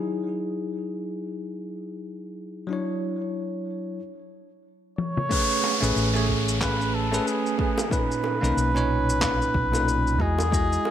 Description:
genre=sunset chillout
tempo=92 BPM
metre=4/4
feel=swing 58% on 16ths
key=A lydian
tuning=A4 = 440 Hz
part: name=bell-like tine electric piano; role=accompaniment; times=0.0-10.9 s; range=A#2 to D#5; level=-28 LUFS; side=equal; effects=auto-pan, digital delay
part: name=trumpet with cup mute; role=melody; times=5.0-10.9 s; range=G#4 to C#5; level=-27 LUFS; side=equal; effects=digital delay
part: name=dusty soul sampler-style drum kit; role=drums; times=5.0-10.8 s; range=crash cymbal, handclaps, shaker, toms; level=-31 LUFS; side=left 2 dB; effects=low-pass filter on toms, low-pass filter on cymbals, low-pass filter on perc, low-pass filter on snare, low-pass filter on room
part: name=electronic kick drum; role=drums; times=5.3-10.7 s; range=none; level=-28 LUFS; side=equal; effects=overdrive
part: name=downlifter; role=sound effects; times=5.3-10.5 s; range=none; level=-30 LUFS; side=equal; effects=none
part: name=bongos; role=percussion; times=5.6-10.9 s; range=none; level=-34 LUFS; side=right 3 dB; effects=none
part: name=hollow-body short-scale fingered electric bass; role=bass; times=5.8-10.8 s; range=A1 to E2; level=-26 LUFS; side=equal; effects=none
room=light reverb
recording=none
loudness=-22 LUFS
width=side -10 dB against mid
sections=0.0-5.3 A section; 5.3-10.9 B section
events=break 4.0-5.3; drum fill 5.0-5.3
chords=0.0 Emaj9; 2.7 Dmaj9; 5.3 Amaj9; 7.9 Bmaj9; 10.2 Emaj9

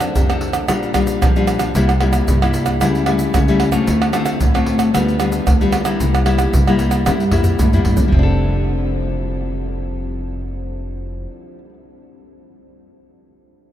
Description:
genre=samba and choro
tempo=113 BPM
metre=4/4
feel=straight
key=F major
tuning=A4 = 444 Hz
part: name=nylon-string guitar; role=accompaniment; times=0.0-11.7 s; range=G2 to A4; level=-19 LUFS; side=left 3 dB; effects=none
part: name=upright bass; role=bass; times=0.0-11.2 s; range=F1 to Bb2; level=-20 LUFS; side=equal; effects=none
part: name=egg shaker, pandeiro, tamborim and surdo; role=percussion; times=0.0-8.2 s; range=none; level=-18 LUFS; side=right 1 dB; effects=none
room=moderate huge ambient reverb, RT60 8.5 s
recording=in a vast, echoing space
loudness=-14 LUFS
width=side -11 dB against mid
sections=0.0-8.1 A section; 8.1-12.4 B section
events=drum fill 7.1-8.1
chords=0.0 F6; 0.7 Bb6; 1.8 C7; 2.8 A7/C#; 3.9 Dm7; 4.9 G7/D; 6.0 C7; 8.1 F6

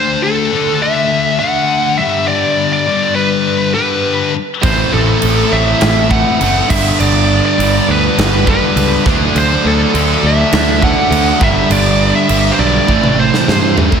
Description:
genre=hard rock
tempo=102 BPM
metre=4/4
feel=straight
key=unclear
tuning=A4 = 441 Hz
part: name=high-gain lead guitar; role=melody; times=0.0-13.7 s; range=A4 to F#5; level=-15 LUFS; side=equal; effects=distortion, slapback echo
part: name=scooped high-gain guitar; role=riff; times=0.0-14.0 s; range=G2 to D4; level=-17 LUFS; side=left 8 dB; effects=distortion
part: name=crunchy overdriven guitar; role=riff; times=4.6-14.0 s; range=G2 to E4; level=-20 LUFS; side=right 2 dB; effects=slapback echo
part: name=tight distorted guitar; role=riff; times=4.6-14.0 s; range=G2 to D4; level=-18 LUFS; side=right 12 dB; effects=distortion, slapback echo
part: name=modern bright picked electric bass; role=bass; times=4.6-13.9 s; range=F#1 to G2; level=-16 LUFS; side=right 1 dB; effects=none
part: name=big rock drum kit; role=drums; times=4.6-14.0 s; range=crash cymbal, kick drum, snare drum, toms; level=-17 LUFS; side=right 2 dB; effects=none
room=moderate lush hall reverb, RT60 2.4 s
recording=big arena sound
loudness=-10 LUFS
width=side -7 dB against mid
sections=0.0-14.0 A section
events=drum fill 12.9-14.0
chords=0.0 D; 2.0 G; 4.6 Am; 6.7 G; 9.1 D; 11.4 G; 12.9 Am

